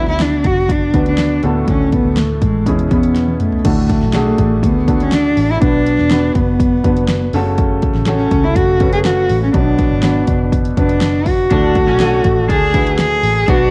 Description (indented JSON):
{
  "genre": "piano-driven pop",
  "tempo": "122 BPM",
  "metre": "4/4",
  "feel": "straight",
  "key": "unclear",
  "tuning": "A4 = 440 Hz",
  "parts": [
    { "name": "dark cello", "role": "melody", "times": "0.0-13.7 s", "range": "G#3 to G#4", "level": "-18 LUFS", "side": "equal", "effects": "none" },
    { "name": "felt-muted upright piano", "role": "accompaniment", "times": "0.0-13.7 s", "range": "A2 to B4", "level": "-22 LUFS", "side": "equal", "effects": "cassette tape" },
    { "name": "vintage muted fingered electric bass", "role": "bass", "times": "0.0-13.7 s", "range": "E1 to E2", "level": "-21 LUFS", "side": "equal", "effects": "none" },
    { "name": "pop drum kit", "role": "drums", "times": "0.1-13.6 s", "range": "crash cymbal, hi-hat, kick drum, snare drum, toms", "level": "-20 LUFS", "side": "equal", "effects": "cassette tape" },
    { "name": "raw garage guitar", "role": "riff", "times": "11.5-13.7 s", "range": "C#4 to E4", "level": "-27 LUFS", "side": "equal", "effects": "overdrive, cassette tape" }
  ],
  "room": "little or no reverb",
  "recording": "home recording on cassette",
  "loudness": "-14 LUFS",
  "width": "mono",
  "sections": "0.0-3.6 A section; 3.6-13.7 B section",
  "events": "drum fill 3.2-3.6",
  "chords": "0.0 Bm; 1.4 D; 2.7 E6; 3.6 D; 5.6 Bm; 7.3 F#m; 9.5 Bm; 11.5 D"
}